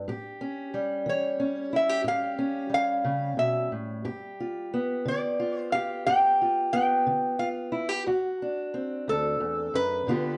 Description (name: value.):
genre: acoustic country blues, solo or duo.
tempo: 60 BPM (dotted quarters).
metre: 12/8.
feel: straight.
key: unclear.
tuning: A4 = 441 Hz.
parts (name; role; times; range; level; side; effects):
fingerpicked steel-string acoustic guitar; accompaniment; 0.0-10.4 s; D2 to G4; -32 LUFS; equal; none.
lap resonator guitar; melody; 1.1-10.4 s; A4 to G5; -28 LUFS; equal; none.
room: wet studio reverb, RT60 0.8 s.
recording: nothing above 10.9 kHz.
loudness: -28 LUFS.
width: mono.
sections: 0.0-10.4 A section.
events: none.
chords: 0.1 A7; 4.1 G7; 8.1 D7.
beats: | 0.07 1.06 2.06 3.06 | 4.05 5.05 6.06 7.06 | 8.06 9.06 10.06.